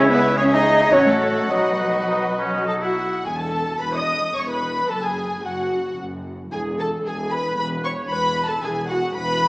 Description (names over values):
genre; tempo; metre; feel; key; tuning
quick classical-period movement for symphony orchestra; 100-115 BPM; 3/4; rubato; E major; A4 = 439 Hz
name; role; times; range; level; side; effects
warm symphonic violin section; melody; 0.0-9.5 s; E5 to D#6; -26 LUFS; left 1 dB; none
clear oboe; second line; 0.0-3.3 s; C#4 to G#4; -24 LUFS; equal; none
silver concert flute; second line; 0.0-2.7 s; F#4 to D#5; -26 LUFS; equal; none
rich chamber viola section; accompaniment; 0.0-9.5 s; F#4 to D#5; -26 LUFS; equal; none
dark French horn section; sustained chords; 0.0-3.0 s; F#4 to E5; -26 LUFS; equal; none
rich chamber double bass section; bass; 0.0-9.5 s; E1 to C#2; -30 LUFS; equal; none
warm chamber cello section; bass; 0.0-9.5 s; E2 to D#4; -24 LUFS; equal; none
rich chamber violin section; second line; 0.1-9.5 s; F#4 to D#5; -29 LUFS; left 1 dB; none
dark clarinet; second line; 0.9-1.7 s; C#5 to D#5; -25 LUFS; equal; none
warm bassoon; accompaniment; 0.9-1.7 s; F#3; -24 LUFS; equal; none
room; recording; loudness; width
wet scoring stage reverb, RT60 1.9 s; small speaker sound; -18 LUFS; side -24 dB against mid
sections
0.0-3.3 A section; 3.3-9.5 B section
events
none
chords
0.0 C#m; 0.9 F#m/A; 1.5 B; 3.3 Asus2/E; 4.9 F#sus2; 6.5 E5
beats
0.37 0.92 | 1.50 2.09 2.67 | 3.25 3.81 4.36 | 4.90 5.44 5.98 | 6.52 7.05 7.57 | 8.10 8.63 9.16